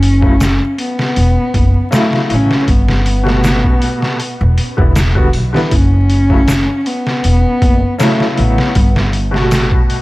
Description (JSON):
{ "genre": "trip hop", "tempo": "79 BPM", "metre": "4/4", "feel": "straight", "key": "F# phrygian", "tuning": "A4 = 440 Hz", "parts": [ { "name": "dark cello", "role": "melody", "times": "0.0-9.1 s", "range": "A3 to C#4", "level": "-17 LUFS", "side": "equal", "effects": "dub echo" }, { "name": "upright bass", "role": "bass", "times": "0.0-9.7 s", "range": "E1 to B1", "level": "-14 LUFS", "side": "equal", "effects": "none" }, { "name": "trip hop sampler-style drum kit", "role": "drums", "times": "0.0-10.0 s", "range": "hi-hat, kick drum, snare drum", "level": "-15 LUFS", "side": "equal", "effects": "none" }, { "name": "bright upright piano", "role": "accompaniment", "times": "0.2-10.0 s", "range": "B2 to F#4", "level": "-18 LUFS", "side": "left 1 dB", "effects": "tremolo, tape echo" }, { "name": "egg shaker", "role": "percussion", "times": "0.4-9.7 s", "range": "none", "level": "-32 LUFS", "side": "right 4 dB", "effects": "none" } ], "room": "small room ambience", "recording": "vinyl crackle", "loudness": "-10 LUFS", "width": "side -19 dB against mid", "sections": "0.0-10.0 A section", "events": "none", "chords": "0.0 F#m7; 2.7 Gmaj9; 4.2 Em7; 5.7 F#m7; 8.8 Gmaj9" }